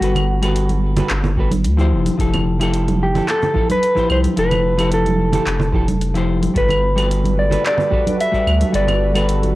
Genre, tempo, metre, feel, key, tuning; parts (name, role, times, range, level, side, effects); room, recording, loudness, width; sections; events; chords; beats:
sunset chillout; 110 BPM; 4/4; straight; A4 = 440 Hz
mellow electric guitar; melody; 0.0-9.3 s; F#4 to E5; -20 LUFS; equal; digital delay
hollow-body jazz guitar; accompaniment; 0.0-9.6 s; F3 to D5; -22 LUFS; moving between left 4 dB and right 3 dB; auto-pan, digital delay
round analog bass; bass; 0.0-9.6 s; F1 to D2; -18 LUFS; equal; tube saturation
deep house drum kit; drums; 0.0-9.5 s; cabasa, claves, handclaps, hi-hat; -26 LUFS; equal; overdrive
congas; percussion; 0.2-9.5 s; -24 LUFS; right 3 dB
electronic kick drum; drums; 1.4-8.4 s; -21 LUFS; equal
lush unison pad; sustained chords; 7.2-9.6 s; G3 to B4; -26 LUFS; equal; chorus
light reverb; worn, warbling old tape, cassette tape, warbly pitch drift; -15 LUFS; side -17 dB against mid
0.0-9.6 A section
0.0 Gmaj9; 1.9 Fmaj9; 6.6 Gmaj9
| 0.01 0.56 1.10 1.65 | 2.20 2.74 3.29 3.83 | 4.38 4.92 5.47 6.01 | 6.56 7.11 7.65 8.20 | 8.74 9.29